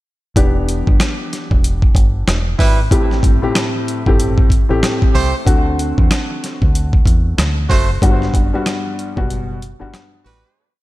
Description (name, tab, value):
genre	hip hop, boom-bap hip-hop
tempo	94 BPM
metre	4/4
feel	swing 61% on 16ths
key	E minor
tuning	A4 = 440 Hz
part	dark upright piano	accompaniment	0.4-10.2 s	G2 to G4	-20 LUFS	left 2 dB	cassette tape
part	deep dub fingered electric bass	bass	0.4-10.4 s	E1 to E2	-19 LUFS	equal	none
part	dusty soul sampler-style drum kit	drums	0.4-10.4 s	hi-hat, kick drum, rim click, snare drum	-15 LUFS	equal	none
part	warm trumpet section	stabs	2.6-10.7 s	G3 to C5	-24 LUFS	right 4 dB	analog delay
room	light reverb, small room ambience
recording	none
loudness	-13 LUFS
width	side -17 dB against mid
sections	0.4-10.6 hook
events	fade-out 8.0-10.6; break 9.3-10.6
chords	0.4 Em7; 2.9 Am7; 5.5 D7; 8.0 Gmaj7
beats	| 0.36 1.00 1.64 2.27 | 2.91 3.55 4.19 4.83 | 5.47 6.10 6.74 7.38 | 8.02 8.66 9.29 9.93